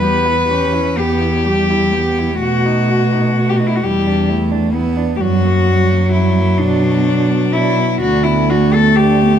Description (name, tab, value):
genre	classical, lyrical piece for cello ensemble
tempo	42 BPM (dotted quarters)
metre	6/8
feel	rubato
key	B minor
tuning	A4 = 439 Hz
part	rich cello	melody	0.0-9.4 s	D4 to B4	-17 LUFS	left 4 dB	none
part	dark cello	second line	0.0-9.4 s	G3 to G4	-22 LUFS	right 11 dB	none
part	warm cello	accompaniment	0.0-9.4 s	F#3 to C#4	-17 LUFS	right 1 dB	none
part	dark cello	bass	0.0-9.3 s	D2 to B2	-18 LUFS	right 1 dB	none
room	moderate scoring stage reverb, RT60 1.8 s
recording	close, detailed microphones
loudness	-12 LUFS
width	side -9 dB against mid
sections	0.0-9.4 A section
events	none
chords	0.0 Em; 2.4 B7; 3.8 Em7; 5.2 F#; 6.6 Bm; 8.0 Bm/D